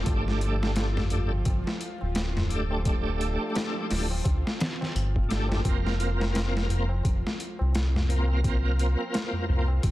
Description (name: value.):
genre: trip hop.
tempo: 86 BPM.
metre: 4/4.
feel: swing 59% on 16ths.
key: G minor.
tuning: A4 = 442 Hz.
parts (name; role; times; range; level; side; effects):
bright tonewheel organ; accompaniment; 0.0-9.7 s; A3 to Bb4; -32 LUFS; right 1 dB; chorus vibrato, slow rotary speaker, tremolo, tape echo.
round analog bass; bass; 0.0-9.9 s; D1 to D2; -26 LUFS; equal; tube saturation.
bowed-like drone; texture; 0.0-9.9 s; F3 to F4; -40 LUFS; left 1 dB; built-in reverb, phaser.
boom bap sampler-style drum kit; drums; 0.1-9.9 s; hi-hat, kick drum, snare drum; -29 LUFS; equal; overdrive.
tabla; percussion; 0.1-9.9 s; none; -36 LUFS; equal; none.
room: little or no reverb.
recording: dense, heavily limited modern master, vinyl crackle.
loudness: -24 LUFS.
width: side -16 dB against mid.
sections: 0.0-9.9 A section.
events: none.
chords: 0.1 Gsus2; 5.6 Fsus4.